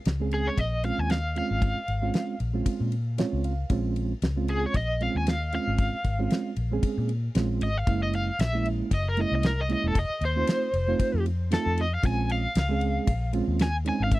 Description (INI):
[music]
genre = straight-eighth soul blues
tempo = 115 BPM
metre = 4/4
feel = swing 55% on 16ths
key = Bb minor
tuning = A4 = 440 Hz
[part]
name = vintage muted fingered electric bass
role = bass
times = 0.1-14.2 s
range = Fb1 to Bb2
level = -28 LUFS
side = left 1 dB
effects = none
[part]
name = damped 70s drum kit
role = drums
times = 0.1-14.2 s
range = kick drum, ride cymbal, snare drum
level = -26 LUFS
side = equal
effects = none
[part]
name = mellow reed electric piano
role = accompaniment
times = 0.2-14.2 s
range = Ab3 to F5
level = -30 LUFS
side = right 5 dB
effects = fast tremolo
[part]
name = crunchy overdriven guitar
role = melody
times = 0.3-14.2 s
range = Ab4 to Ab5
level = -30 LUFS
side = left 1 dB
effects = tremolo
[sound]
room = little or no reverb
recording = dry, close 1970s-style studio recording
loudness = -24 LUFS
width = side -17 dB against mid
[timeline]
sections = 0.0-14.2 A section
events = overdriven electric guitar solo 0.0-14.2; reed electric piano fill 2.9-3.7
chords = 0.0 Bbm7; 7.9 Gb7; 10.0 F7; 12.0 Bbm7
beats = 0.06 0.58 1.10 | 1.62 2.14 2.66 3.19 | 3.71 4.23 4.75 5.27 | 5.79 6.31 6.83 7.35 | 7.87 8.39 8.91 9.44 | 9.96 10.48 11.00 11.52 | 12.04 12.56 13.08 13.60 | 14.12